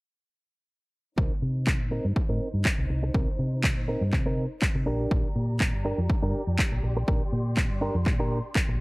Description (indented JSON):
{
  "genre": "filtered disco house",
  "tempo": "122 BPM",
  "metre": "4/4",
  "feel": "swing 54% on 16ths",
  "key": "C minor",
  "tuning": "A4 = 440 Hz",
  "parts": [
    { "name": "dark symphonic violin section", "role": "sustained chords", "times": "1.2-8.8 s", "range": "Eb4 to C6", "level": "-40 LUFS", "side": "left 1 dB", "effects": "sidechain pumping, low-pass filter" },
    { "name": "direct-recorded clean electric guitar", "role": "riff", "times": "1.2-8.7 s", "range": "C4 to Bb4", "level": "-31 LUFS", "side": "right 1 dB", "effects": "vintage 12-bit sampler grit, sidechain pumping, low-pass filter" },
    { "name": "hollow-body short-scale fingered electric bass", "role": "bass", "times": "1.2-8.8 s", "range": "Bb1 to C3", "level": "-28 LUFS", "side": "equal", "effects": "sidechain pumping, low-pass filter" },
    { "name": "electronic kick drum", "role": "drums", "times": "1.2-8.7 s", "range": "none", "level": "-27 LUFS", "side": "equal", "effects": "overdrive" },
    { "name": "electronic handclaps", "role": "drums", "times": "1.7-8.7 s", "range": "none", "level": "-30 LUFS", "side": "equal", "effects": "overdrive" }
  ],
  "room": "digital ambience",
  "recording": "dry, gritty hardware recording, lossy compression artefacts",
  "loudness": "-24 LUFS",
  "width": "side -25 dB against mid",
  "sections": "1.2-8.8 A section",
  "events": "filter sweep 1.2-8.8",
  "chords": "1.2 Cm7; 4.9 Bb6"
}